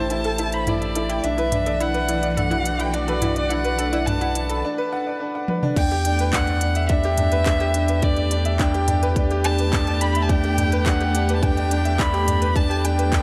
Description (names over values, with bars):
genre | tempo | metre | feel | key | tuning
piano and strings electronica | 106 BPM | 4/4 | straight | E minor | A4 = 442 Hz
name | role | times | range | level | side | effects
rich violin | melody | 0.0-13.2 s | D5 to B5 | -28 LUFS | equal | none
dark chamber string section | sustained chords | 0.0-13.2 s | E3 to G4 | -32 LUFS | equal | sidechain pumping
analog pluck | arpeggios | 0.0-4.6 s | E4 to A4 | -33 LUFS | equal | chorus, sidechain pumping, digital delay
bright upright piano | riff | 0.0-13.2 s | D4 to B5 | -28 LUFS | equal | digital delay
warm sub bass | bass | 0.0-13.2 s | A1 to E2 | -26 LUFS | equal | tube saturation, sidechain pumping
organic electronic drum kit | drums | 0.1-13.2 s | crash cymbal, handclaps, hi-hat, toms | -30 LUFS | equal | none
electronic kick drum | drums | 5.8-13.2 s | none | -24 LUFS | equal | none
room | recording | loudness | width
light reverb | none | -21 LUFS | mono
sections
0.0-5.8 A section; 5.8-13.2 B section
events
build-up 0.0-5.8; filter sweep on synth arpeggio sound 0.0-5.8; break 4.6-5.8; drum fill 5.5; drop 5.8-13.2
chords
0.0 Am7; 1.2 Bm; 5.8 Em7